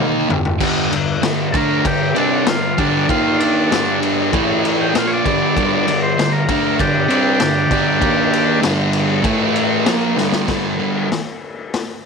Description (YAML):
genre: garage rock duo or trio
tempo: 97 BPM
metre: 4/4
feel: straight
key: G minor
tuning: A4 = 439 Hz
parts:
  - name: thick fuzz guitar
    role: riff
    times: 0.0-11.1 s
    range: G2 to Eb4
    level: -17 LUFS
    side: right 1 dB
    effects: distortion
  - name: raw garage drum kit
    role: drums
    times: 0.3-11.9 s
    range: crash cymbal, hi-hat, kick drum, ride cymbal, snare drum, splash cymbal, toms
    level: -20 LUFS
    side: left 4 dB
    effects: none
  - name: combo organ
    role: melody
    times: 1.5-8.6 s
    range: D4 to G5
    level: -20 LUFS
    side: equal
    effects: spring reverb
room: light reverb, studio reverb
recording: 1960s-style stereo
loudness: -14 LUFS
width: side -5 dB against mid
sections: 0.0-10.5 A section; 10.5-12.1 B section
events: drum fill 0.0-0.6, 10.2-10.5; transistor combo organ solo 0.0-10.5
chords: 0.0 G5; 3.1 Eb5; 3.7 G5; 4.3 A5; 4.9 Gm; 8.0 Eb5; 8.6 G5; 9.3 A5; 9.9 Gm; 10.5 G5